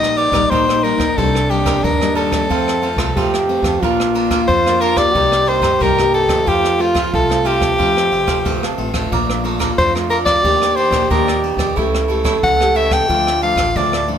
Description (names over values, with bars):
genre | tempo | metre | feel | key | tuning
samba and choro | 91 BPM | 4/4 | straight | Bb major | A4 = 440 Hz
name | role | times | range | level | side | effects
bright soprano saxophone | melody | 0.0-14.1 s | F4 to G5 | -16 LUFS | left 2 dB | plate reverb
warm trombone | second line | 0.0-14.1 s | C4 to A4 | -20 LUFS | right 4 dB | none
cavaquinho | accompaniment | 0.0-14.2 s | D4 to Bb5 | -25 LUFS | right 6 dB | none
nylon-string guitar | accompaniment | 0.0-14.2 s | F2 to G4 | -24 LUFS | left 5 dB | none
upright bass | bass | 0.0-14.2 s | F1 to G2 | -24 LUFS | equal | none
jazz brush drum kit | drums | 0.0-14.2 s | kick drum, ride cymbal, rim click | -22 LUFS | equal | none
room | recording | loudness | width
moderate large studio reverb, RT60 0.9 s | none | -13 LUFS | side -8 dB against mid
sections
0.0-14.2 A section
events
none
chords
0.0 Eb/Bb; 1.2 Cm7; 2.5 F; 3.8 Bb; 5.2 Cm7; 6.5 F; 9.1 Bbmaj7; 10.4 Ebmaj7; 11.8 A7/C#; 13.1 Dm